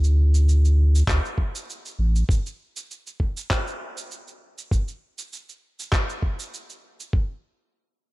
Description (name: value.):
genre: sunset chillout.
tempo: 99 BPM.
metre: 4/4.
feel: straight.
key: unclear.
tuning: A4 = 440 Hz.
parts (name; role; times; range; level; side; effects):
warm sub bass; bass; 0.0-2.2 s; A1 to D2; -16 LUFS; equal; none.
electronic shaker and handclaps; drums; 0.0-7.1 s; none; -31 LUFS; equal; none.
electronic kick drum; drums; 1.1-7.3 s; none; -23 LUFS; equal; none.
room: little or no reverb.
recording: none.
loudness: -20 LUFS.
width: side -20 dB against mid.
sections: 0.0-7.1 A section.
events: none.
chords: none.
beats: 0.47 1.07 1.68 | 2.28 2.89 3.50 4.10 | 4.71 5.31 5.92 6.53 | 7.13.